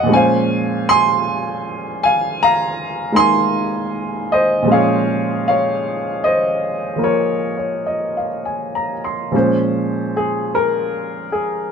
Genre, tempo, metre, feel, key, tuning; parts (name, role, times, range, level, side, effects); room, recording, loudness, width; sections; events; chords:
jazz ballad; 52 BPM; 4/4; swing 66% on 8ths; Bb minor; A4 = 440 Hz
warm baby grand piano; solo; 0.0-11.7 s; Bb2 to C6; -16 LUFS; equal
moderate studio reverb, RT60 0.6 s; band playing live in one room; -16 LUFS; side -6 dB against mid
0.0-9.3 A section; 9.3-11.7 B section
0.1 Bbm9